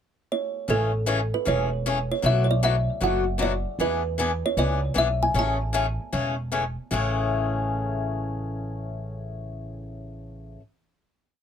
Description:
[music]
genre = acoustic string swing (jazz manouche)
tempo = 155 BPM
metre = 4/4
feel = swing 63% on 8ths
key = A major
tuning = A4 = 440 Hz
[part]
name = kalimba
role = melody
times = 0.3-6.5 s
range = A4 to A5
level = -26 LUFS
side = right 2 dB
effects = plate reverb
[part]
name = picked swing-style acoustic guitar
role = accompaniment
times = 0.7-10.6 s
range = A2 to G#4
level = -27 LUFS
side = left 5 dB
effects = none
[part]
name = upright bass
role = bass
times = 0.7-10.6 s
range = E1 to E2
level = -27 LUFS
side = right 1 dB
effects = none
[sound]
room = light reverb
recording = dark, warm production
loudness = -23 LUFS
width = side -8 dB against mid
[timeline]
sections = 0.0-0.7 pickup bar; 0.7-6.9 A section; 6.9-10.0 final chord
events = none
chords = 0.0 N.C.; 0.7 Amaj7; 2.3 Bm7; 3.8 E7; 5.4 Amaj7

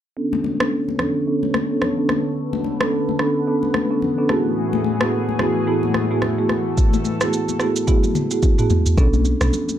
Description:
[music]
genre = afrobeats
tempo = 109 BPM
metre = 4/4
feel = swing 58% on 16ths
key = B dorian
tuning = A4 = 440 Hz
[part]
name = marimba with medium mallets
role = accompaniment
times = 0.2-9.6 s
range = A3 to A4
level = -21 LUFS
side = right 2 dB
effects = low-pass filter
[part]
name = lush unison pad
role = sustained chords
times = 0.2-9.0 s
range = A2 to C#5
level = -25 LUFS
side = left 2 dB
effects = chorus, low-pass filter
[part]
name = congas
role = percussion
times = 0.3-9.8 s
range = none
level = -27 LUFS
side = left 9 dB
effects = none
[part]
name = afro-pop drum kit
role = drums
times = 0.6-9.8 s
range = kick drum, rim click, shaker, toms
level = -20 LUFS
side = equal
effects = none
[part]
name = woody log drum bass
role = bass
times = 9.0-9.5 s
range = B1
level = -18 LUFS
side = equal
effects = none
[sound]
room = moderate studio reverb, RT60 0.5 s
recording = dark, warm production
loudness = -17 LUFS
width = side -11 dB against mid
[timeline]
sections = 0.2-9.0 A section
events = filter sweep 0.2-9.0; drum fill 7.9-9.0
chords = 0.2 Bm9; 4.3 F#m11/A; 9.0 Bm9

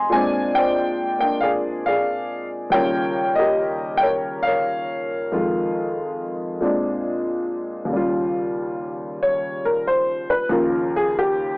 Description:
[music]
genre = solo jazz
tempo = 92 BPM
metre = 4/4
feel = swing 69% on 8ths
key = Eb mixolydian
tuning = A4 = 440 Hz
[part]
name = warm upright piano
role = solo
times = 0.0-11.6 s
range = Eb2 to C6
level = -19 LUFS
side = equal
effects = none
[sound]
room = moderate booth ambience, RT60 0.2 s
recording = home recording on cassette, AM radio sound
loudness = -19 LUFS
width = side -30 dB against mid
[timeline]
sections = 0.0-7.9 A section; 7.9-11.6 B section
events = upright piano solo 7.9-11.6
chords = 0.1 Bb9; 2.7 Eb9; 5.3 Fm7; 6.6 Bb9; 7.9 Eb9

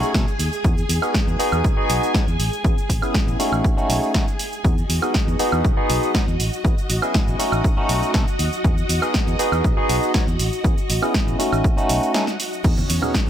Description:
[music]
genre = filtered disco house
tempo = 120 BPM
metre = 4/4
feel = straight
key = E major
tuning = A4 = 439 Hz
[part]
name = barky tine electric piano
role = accompaniment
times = 0.0-13.3 s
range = A3 to C#5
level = -23 LUFS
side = equal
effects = phaser, sidechain pumping
[part]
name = string machine, full ensemble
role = sustained chords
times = 0.0-13.3 s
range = C#4 to G#5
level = -28 LUFS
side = left 1 dB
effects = ensemble chorus, vintage 12-bit sampler grit, sidechain pumping
[part]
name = fingered electric bass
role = bass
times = 0.0-13.3 s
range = A1 to B2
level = -23 LUFS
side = equal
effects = sidechain pumping
[part]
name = punchy analog drum machine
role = drums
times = 0.0-13.3 s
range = crash cymbal, hi-hat, shaker, snare drum, woodblock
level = -25 LUFS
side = right 1 dB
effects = sidechain pumping on perc, sidechain pumping on cymbals, sidechain pumping on hats
[part]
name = electronic kick drum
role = drums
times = 0.1-13.2 s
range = none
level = -20 LUFS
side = equal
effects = none
[part]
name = tube shaker and congas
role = percussion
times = 12.6-13.3 s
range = none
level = -30 LUFS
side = right 2 dB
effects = sidechain pumping on perc
[sound]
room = digital ambience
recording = none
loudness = -17 LUFS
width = side -10 dB against mid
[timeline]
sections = 0.0-13.3 A section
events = break 12.1-12.6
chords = 0.0 B7; 0.6 Emaj9; 2.4 Amaj7; 3.6 B7 (rootless); 4.6 Emaj9; 6.4 Amaj7; 7.6 B7; 8.6 Emaj9; 10.4 Amaj7; 11.6 B7 (rootless); 12.6 Emaj9

